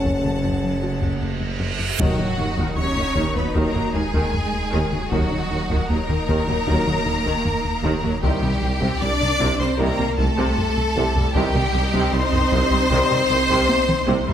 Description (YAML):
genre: cinematic, hybrid orchestral and electronic film score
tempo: 77 BPM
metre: 4/4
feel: straight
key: unclear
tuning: A4 = 440 Hz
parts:
  - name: clear symphonic violin section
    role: second line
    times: 0.0-14.3 s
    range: Gb4 to A5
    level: -25 LUFS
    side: left 2 dB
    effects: none
  - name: warm symphonic viola section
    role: accompaniment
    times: 0.0-14.3 s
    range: C3 to Eb4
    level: -28 LUFS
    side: right 1 dB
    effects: none
  - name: mellow French horn section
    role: sustained chords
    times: 0.0-13.2 s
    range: Gb3 to G4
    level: -29 LUFS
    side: left 3 dB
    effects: none
  - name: plucky analog bass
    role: riff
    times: 0.0-14.3 s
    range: C2 to Gb3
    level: -26 LUFS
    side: left 1 dB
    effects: none
  - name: punchy sub bass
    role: bass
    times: 0.0-14.3 s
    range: Eb1 to C2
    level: -30 LUFS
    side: equal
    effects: none
  - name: rich symphonic double bass section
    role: bass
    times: 0.0-14.3 s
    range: Gb1 to Eb2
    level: -29 LUFS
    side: right 2 dB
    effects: none
  - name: warm symphonic cello section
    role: bass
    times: 0.0-14.3 s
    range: Db3 to D4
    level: -28 LUFS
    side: right 3 dB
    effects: none
  - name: warm tuba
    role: bass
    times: 0.0-14.2 s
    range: Gb1 to Eb2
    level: -29 LUFS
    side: right 3 dB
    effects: none
  - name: reverse cymbal and sub drop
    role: sound effects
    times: 0.8-5.1 s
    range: none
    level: -31 LUFS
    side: right 2 dB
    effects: none
  - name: taiko ensemble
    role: drums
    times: 0.1-14.3 s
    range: none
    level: -29 LUFS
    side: equal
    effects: none
  - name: warm symphonic violin section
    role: melody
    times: 2.0-14.3 s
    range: Gb5 to D6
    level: -28 LUFS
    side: left 3 dB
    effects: none
  - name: clear trombone section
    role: sustained chords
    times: 2.0-13.2 s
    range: C3 to Eb3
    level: -33 LUFS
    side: right 2 dB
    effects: none
room: moderate scoring stage reverb, RT60 1.9 s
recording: none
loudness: -18 LUFS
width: side -9 dB against mid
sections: 0.0-2.0 A section; 2.0-14.3 B section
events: reverse cymbal 0.8-2.0; impact 2.0-5.1; drum fill 13.7-14.3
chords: 0.0 Gbm; 2.0 Ebm; 8.2 Cm